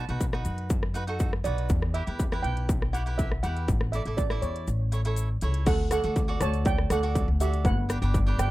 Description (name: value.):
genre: calypso.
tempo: 121 BPM.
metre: 4/4.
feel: straight.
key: D major.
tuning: A4 = 436 Hz.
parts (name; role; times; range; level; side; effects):
steel pan; melody; 0.0-8.5 s; G4 to A5; -32 LUFS; right 4 dB; tape echo.
cavaquinho; accompaniment; 0.0-8.5 s; D4 to D5; -35 LUFS; right 3 dB; none.
upright bass; bass; 0.0-8.5 s; G1 to F#2; -28 LUFS; equal; none.
industrial drum kit; drums; 0.1-8.5 s; crash cymbal, hi-hat, kick drum, rim click; -28 LUFS; equal; distortion.
tube shaker; percussion; 0.2-8.5 s; none; -44 LUFS; left 18 dB; none.
room: little or no reverb.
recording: dry, close 1970s-style studio recording.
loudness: -24 LUFS.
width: side -17 dB against mid.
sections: 0.0-5.7 A section; 5.7-8.5 B section.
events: kick and snare drop out 4.7-5.7.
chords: 0.0 B7; 1.7 Em; 3.7 Asus4; 4.7 A; 5.7 D; 7.6 G.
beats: 0.21 0.70 1.20 | 1.70 2.19 2.69 3.19 | 3.69 4.18 4.68 5.17 | 5.67 6.16 6.66 7.15 | 7.65 8.14.